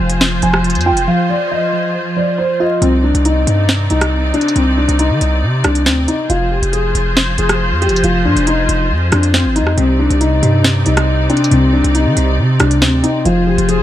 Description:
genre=hip hop, drill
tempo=138 BPM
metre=4/4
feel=half-time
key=C minor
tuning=A4 = 440 Hz
part: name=dark concert grand piano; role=melody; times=0.0-13.8 s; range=C4 to Ab5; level=-17 LUFS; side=left 2 dB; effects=none
part: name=glassy digital keys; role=accompaniment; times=0.0-2.8, 9.8-13.8 s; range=C3 to F4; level=-17 LUFS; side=right 1 dB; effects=chorus
part: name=rich symphonic string section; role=sustained chords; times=0.0-13.8 s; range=C3 to D5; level=-20 LUFS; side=equal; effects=none
part: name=hard-hitting 808-style bass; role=bass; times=0.0-13.8 s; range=F1 to Eb3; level=-15 LUFS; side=equal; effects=none
part: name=drill drum kit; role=drums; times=0.1-13.8 s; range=hi-hat, rim click, snare drum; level=-17 LUFS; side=right 1 dB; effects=vintage 12-bit sampler grit
room=small room ambience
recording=vinyl crackle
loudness=-11 LUFS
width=side -12 dB against mid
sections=0.0-2.8 A section; 2.8-13.8 B section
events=break 1.1-2.8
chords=0.0 Fm; 2.8 Cmadd9; 6.3 Fm; 9.8 Cmadd9; 13.3 Fm

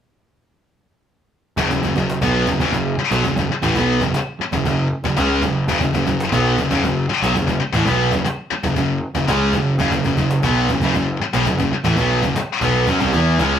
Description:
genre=hard rock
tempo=117 BPM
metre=4/4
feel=straight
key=F# minor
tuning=A4 = 438 Hz
part: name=crunchy overdriven guitar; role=riff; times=1.6-13.6 s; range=F#2 to E4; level=-21 LUFS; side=right 3 dB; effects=none
part: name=heavy high-gain guitar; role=riff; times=1.6-13.6 s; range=F#2 to E4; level=-20 LUFS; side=left 4 dB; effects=distortion
part: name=fuzz picked electric bass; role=bass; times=1.6-13.6 s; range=F#1 to F#2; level=-22 LUFS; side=equal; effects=overdrive
part: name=cajon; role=drums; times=1.6-13.5 s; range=none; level=-27 LUFS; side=equal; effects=none
room=wet studio reverb, RT60 0.6 s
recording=rough rehearsal-room recording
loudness=-16 LUFS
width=side -9 dB against mid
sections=1.6-13.6 A section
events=none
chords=1.6 F#5

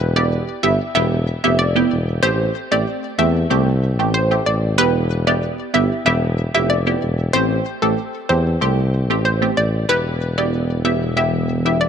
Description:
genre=dancehall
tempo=94 BPM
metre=4/4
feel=straight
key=unclear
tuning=A4 = 440 Hz
part: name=punchy chord stab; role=accompaniment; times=0.0-11.9 s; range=A3 to G4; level=-21 LUFS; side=right 2 dB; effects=chorus, phaser
part: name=warm tuba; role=bass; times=0.0-11.9 s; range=E1 to E2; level=-19 LUFS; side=left 1 dB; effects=none
part: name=analog pluck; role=melody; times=0.2-11.9 s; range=A4 to E5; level=-21 LUFS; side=equal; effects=chorus, ping-pong delay
part: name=deep dark ambient pad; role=sustained chords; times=11.1-11.9 s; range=E3 to G4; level=-26 LUFS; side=equal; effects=chorus, built-in reverb
room=light reverb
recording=dark, warm production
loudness=-16 LUFS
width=side -8 dB against mid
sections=0.0-9.9 A section; 9.9-11.9 B section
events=none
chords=0.0 Em; 2.2 Am7; 4.8 Em; 7.3 Am7; 9.9 Em

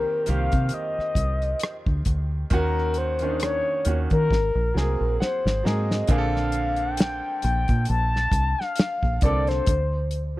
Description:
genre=R&B, neo-soul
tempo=67 BPM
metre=4/4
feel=swing 56% on 16ths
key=Bb major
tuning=A4 = 440 Hz
part: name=mellow horn-like synth lead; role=melody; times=0.0-10.4 s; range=Bb4 to A5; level=-26 LUFS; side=left 2 dB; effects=chorus
part: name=clear upright piano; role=accompaniment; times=0.0-10.4 s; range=D3 to Bb5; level=-30 LUFS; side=right 3 dB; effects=none
part: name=deep dub fingered electric bass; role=bass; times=0.0-10.4 s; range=Ab1 to Eb3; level=-24 LUFS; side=equal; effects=none
part: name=damped 70s drum kit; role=drums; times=0.3-10.3 s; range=hi-hat, kick drum, rim click, snare drum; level=-24 LUFS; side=equal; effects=none
room=studio ambience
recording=dry, close 1970s-style studio recording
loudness=-21 LUFS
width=side -17 dB against mid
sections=0.0-6.1 A section; 6.1-10.4 B section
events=drum fill 4.3-6.1; upright piano fill 4.7-6.1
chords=0.0 Cm7; 2.5 Ebm7; 4.3 Ab9; 6.1 Bbmaj9; 9.7 D7(no3)

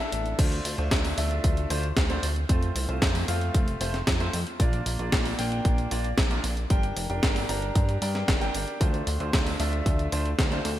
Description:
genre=italo disco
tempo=114 BPM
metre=4/4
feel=straight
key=D minor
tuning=A4 = 440 Hz
part: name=clear grand piano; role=stabs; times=0.0-10.7 s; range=A3 to Bb5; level=-31 LUFS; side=equal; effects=wide subtle chorus, digital delay
part: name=chorused synth bass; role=bass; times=0.1-10.8 s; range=F1 to G2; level=-29 LUFS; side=equal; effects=none
part: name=gated 80s digital drum machine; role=drums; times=0.1-10.8 s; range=crash cymbal, hi-hat, snare drum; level=-30 LUFS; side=equal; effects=gated reverb, gated reverb snare
part: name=electronic kick drum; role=drums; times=0.4-10.5 s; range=none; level=-25 LUFS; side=equal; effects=none
room=light reverb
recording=bright 1980s-style digital production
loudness=-23 LUFS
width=side -13 dB against mid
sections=0.4-10.8 A section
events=none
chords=0.4 Dm7; 2.5 F; 4.6 Bb; 6.7 Gm; 8.8 Dm7

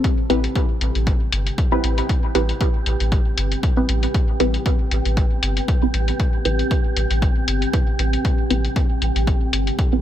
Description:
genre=dub techno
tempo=117 BPM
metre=4/4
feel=swing 55% on 16ths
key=A minor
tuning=A4 = 440 Hz
part: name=deep dark ambient pad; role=sustained chords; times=0.0-10.0 s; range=C4 to B4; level=-28 LUFS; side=left 2 dB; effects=chorus, built-in reverb, sidechain pumping
part: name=filtered dub chord stab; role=stabs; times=0.0-10.0 s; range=C4 to B4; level=-24 LUFS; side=right 1 dB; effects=phaser, cassette tape, sidechain pumping, dub echo
part: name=electronic hi-hat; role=drums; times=0.0-9.9 s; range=none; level=-26 LUFS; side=left 4 dB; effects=none
part: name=electronic kick drum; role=drums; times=0.0-9.9 s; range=none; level=-19 LUFS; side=equal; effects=none
part: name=wind-like tuned noise texture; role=texture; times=0.8-10.0 s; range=G4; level=-31 LUFS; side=right 6 dB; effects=built-in reverb, sidechain pumping
part: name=soft dub sub bass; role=bass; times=0.3-9.7 s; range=G1 to A1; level=-21 LUFS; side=equal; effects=sidechain pumping
room=digital ambience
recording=none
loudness=-17 LUFS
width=side -11 dB against mid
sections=0.0-10.0 A section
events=filter sweep on synth stab 0.0-10.0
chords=0.0 Am7

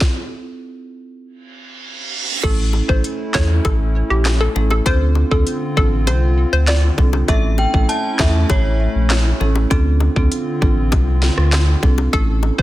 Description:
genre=dancehall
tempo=99 BPM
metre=4/4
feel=straight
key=D minor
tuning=A4 = 436 Hz
part: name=island pop drum kit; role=drums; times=0.0-12.6 s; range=crash cymbal, handclaps, hi-hat, kick drum, rim click, snare drum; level=-18 LUFS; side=equal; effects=overdrive, vintage 12-bit sampler grit
part: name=reverse cymbal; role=sound effects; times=1.5-2.4 s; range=none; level=-24 LUFS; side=right 5 dB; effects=none
part: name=hollow square pluck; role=melody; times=2.4-7.1, 12.1-12.6 s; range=G4 to D5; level=-23 LUFS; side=left 1 dB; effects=chorus, digital delay
part: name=marimba with medium mallets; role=accompaniment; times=2.4-12.6 s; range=A3 to A4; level=-25 LUFS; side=right 3 dB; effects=none
part: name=hollow soft pad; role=sustained chords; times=2.8-12.6 s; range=D3 to F4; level=-26 LUFS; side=left 2 dB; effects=chorus, sidechain pumping
part: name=warm sub bass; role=bass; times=2.4-12.6 s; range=A1 to E2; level=-16 LUFS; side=equal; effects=none
part: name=bongos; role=percussion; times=2.4-12.6 s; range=none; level=-27 LUFS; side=left 7 dB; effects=none
part: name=synth chime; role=second line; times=7.3-9.7 s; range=C#5 to A5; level=-23 LUFS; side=equal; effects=ensemble chorus, digital delay
room=digital ambience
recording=dense, heavily limited modern master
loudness=-14 LUFS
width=side -16 dB against mid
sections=0.0-2.4 A section; 2.4-12.6 B section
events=stop 0.0-2.4; reverse cymbal 1.5-2.4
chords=0.0 N.C.; 2.4 A; 4.9 Dm7; 7.3 A; 9.7 Dm7

